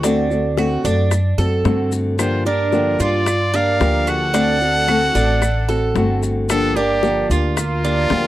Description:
latin, Cuban son and guajira; 112 BPM; 4/4; straight; G minor; A4 = 441 Hz
nylon-string guitar; accompaniment; 0.0-8.3 s; D3 to G4; -21 LUFS; left 2 dB
Cuban tres; arpeggios; 0.0-8.3 s; D4 to A4; -22 LUFS; right 5 dB
upright bass; bass; 0.0-8.3 s; G1 to G2; -20 LUFS; equal
bongos; percussion; 0.0-8.3 s; -24 LUFS; left 8 dB
maracas; percussion; 0.0-8.3 s; -32 LUFS; left 6 dB
claves; percussion; 0.6-7.8 s; -29 LUFS; right 8 dB
bright trumpet; melody; 2.2-8.3 s; F4 to F#5; -21 LUFS; equal
clear studio violin section; second line; 2.2-8.3 s; Bb3 to Bb4; -27 LUFS; left 2 dB
moderate small room ambience, RT60 0.5 s; dry, close 1970s-style studio recording; -15 LUFS; side -14 dB against mid
0.0-8.3 A section
0.0 D7; 2.2 Gm7; 4.3 D7; 6.5 Gm7

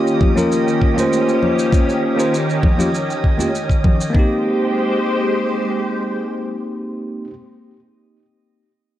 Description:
sunset chillout; 99 BPM; 4/4; straight; Ab major; A4 = 437 Hz
bell-like tine electric piano; accompaniment; 0.0-7.3 s; Bb3 to C5; -19 LUFS; equal; auto-pan, low-pass filter, ping-pong delay
soft string machine; sustained chords; 0.0-7.3 s; Eb3 to C5; -22 LUFS; equal; phaser, ensemble chorus
drifting glass-harmonics texture; texture; 0.0-4.2 s; Eb5 to Eb6; -29 LUFS; right 5 dB; chorus, built-in reverb
shaker; drums; 0.1-4.1 s; -32 LUFS; right 3 dB
electronic kick drum; drums; 0.2-4.3 s; -15 LUFS; equal
congas; percussion; 0.2-4.0 s; -24 LUFS; left 2 dB
moderate plate reverb, RT60 1.9 s, digital ambience; worn, warbling old tape, cassette tape, warbly pitch drift; -15 LUFS; side -13 dB against mid
0.0-4.1 A section; 4.1-6.6 B section
filter sweep on tine electric piano 0.0-4.1
0.0 Eb7; 4.1 Abmaj7

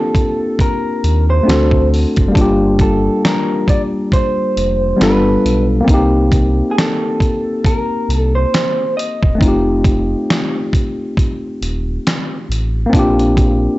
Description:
lo-fi hip hop; 68 BPM; 4/4; swing 57% on 16ths; G minor; A4 = 440 Hz
electric guitar through a small old amp; melody; 0.0-9.4 s; Ab4 to Eb5; -20 LUFS; right 1 dB; low-pass filter
tine electric piano; accompaniment; 0.0-13.8 s; G3 to A4; -16 LUFS; left 1 dB; overdrive, cassette tape, low-pass filter
dusty soul sampler-style drum kit; drums; 0.1-13.6 s; hi-hat, kick drum, snare drum; -16 LUFS; equal
sub bass with octave; bass; 1.0-13.7 s; Eb1 to Eb2; -16 LUFS; equal; transformer saturation
digital ambience; dry, gritty hardware recording, cassette tape, nothing above 8.0 kHz; -12 LUFS; side -18 dB against mid
0.0-13.8 A section
0.0 Bb6; 1.5 D7; 2.3 Gm7; 5.0 G7; 5.9 Cm7; 9.4 F7; 12.9 Bb6

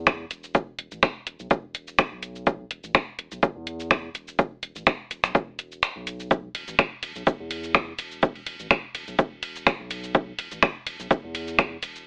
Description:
minimal techno; 125 BPM; 4/4; swing 54% on 16ths; A4 = 440 Hz
round analog bass; bass; 0.0-12.1 s; E1 to E2; -40 LUFS; equal; sidechain pumping
electronic kick drum; drums; 0.1-11.7 s; -22 LUFS; equal
garage drum kit; drums; 0.1-12.0 s; cabasa, finger snaps, hi-hat, ride cymbal; -24 LUFS; equal; overdrive
light reverb; telephone sound; -23 LUFS; side -28 dB against mid
0.0-12.1 A section
kick drops out 5.8-6.3

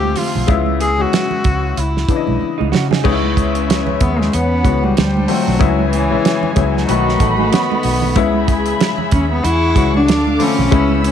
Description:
lush 1970s-style soul; 94 BPM; 4/4; swing 58% on 16ths; C# minor; A4 = 440 Hz
warm cello; melody; 0.0-11.1 s; E3 to G#4; -18 LUFS; left 1 dB; slapback echo
clear baby grand piano; accompaniment; 0.0-11.1 s; C#3 to D#5; -20 LUFS; left 11 dB
vintage muted fingered electric bass; bass; 0.0-11.1 s; A1 to C#3; -19 LUFS; equal
congas; percussion; 0.0-11.1 s; -26 LUFS; right 11 dB
damped 70s drum kit; drums; 0.2-11.1 s; crash cymbal, hi-hat, kick drum, snare drum; -18 LUFS; right 3 dB
vibraphone with hard mallets; texture; 0.5-11.0 s; B5 to E6; -27 LUFS; left 2 dB
electric guitar through a small old amp; riff; 2.6-8.1 s; G#3 to B4; -25 LUFS; right 13 dB; lush chorus
dark studio violin section; second line; 3.1-11.1 s; C#4 to E6; -22 LUFS; equal; slapback echo
light reverb, small room ambience; 1960s-style stereo with parts hard left and right; -13 LUFS; side -9 dB against mid
0.0-3.0 A section; 3.0-11.1 B section
drum fill 2.4-3.0; cello solo 3.0-11.1
0.5 C#m7; 1.8 C#m9; 3.0 C#m7; 4.3 E69; 5.0 Dm7; 5.6 C#m7; 6.9 B7; 8.2 C#m7; 9.4 E69; 10.1 Dm7

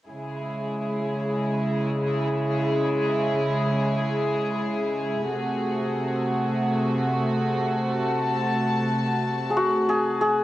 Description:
trip hop; free time; C# harmonic minor; A4 = 442 Hz
warm studio string section; sustained chords; 0.1-10.4 s; B#2 to A5; -23 LUFS; equal; cassette tape
santur; melody; 9.5-10.4 s; F#4 to G#4; -20 LUFS; left 1 dB; cassette tape
light reverb, studio reverb; home recording on cassette; -22 LUFS; side -15 dB against mid
0.1-10.4 A section
0.1 C#m; 5.3 G#7b9

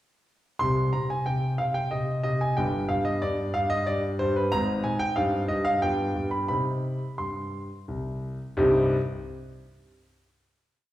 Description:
classical-period piano sonatina; 86-94 BPM; 3/4; straight; C minor; A4 = 440 Hz
clear grand piano; solo; 0.6-9.0 s; G1 to C6; -24 LUFS; equal
wet recital hall reverb, RT60 1.5 s; heard from further back in the room; -24 LUFS; side -14 dB against mid
0.6-8.6 A section; 8.6-10.6 final chord
0.6 C5; 2.6 G; 4.5 Ab; 5.2 Cm/G; 5.8 G7; 6.5 Cm

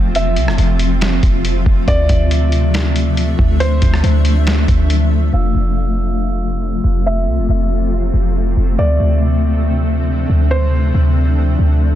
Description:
hip hop, atmospheric cloud-rap; 139 BPM; 4/4; half-time; A4 = 440 Hz
felt-muted upright piano; melody; 0.0-10.9 s; C5 to F5; -24 LUFS; equal; low-pass filter, ping-pong delay
shimmering ambient pad; sustained chords; 0.0-12.0 s; C3 to E5; -20 LUFS; left 2 dB; chorus, built-in reverb, sidechain pumping, low-pass filter
clean 808-style bass; bass; 0.0-12.0 s; F1 to D2; -14 LUFS; equal
vibraphone with soft mallets; texture; 0.0-12.0 s; A3 to E6; -29 LUFS; right 1 dB
lo-fi sampler-style drum kit; drums; 0.1-5.0 s; hi-hat, kick drum, rim click, snare drum; -17 LUFS; equal
little or no reverb; dense, heavily limited modern master; -12 LUFS; side -12 dB against mid
0.0-5.3 A section; 5.3-12.0 B section
filter sweep 5.3-12.0
0.0 Fmaj7; 1.9 Dm9; 5.3 Fmaj7; 8.8 Dm9

